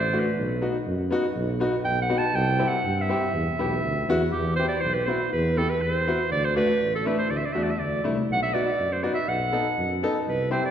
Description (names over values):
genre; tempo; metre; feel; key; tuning
klezmer; 121 BPM; 2/4; straight; E minor; A4 = 437 Hz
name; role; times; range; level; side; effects
clear clarinet; melody; 0.0-10.7 s; G4 to A5; -26 LUFS; right 2 dB; none
breathy tuba; bass; 0.0-10.6 s; A1 to G2; -28 LUFS; equal; none
bright upright piano; accompaniment; 0.1-10.6 s; A3 to A4; -27 LUFS; left 2 dB; none
room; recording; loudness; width
wet concert hall reverb, RT60 1.9 s; recorded in a church or concert hall; -22 LUFS; side -9 dB against mid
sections
0.0-4.3 A section; 4.3-10.7 B section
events
clarinet solo 0.0-4.3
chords
0.4 B; 2.3 C; 3.3 E5; 6.3 D; 8.3 B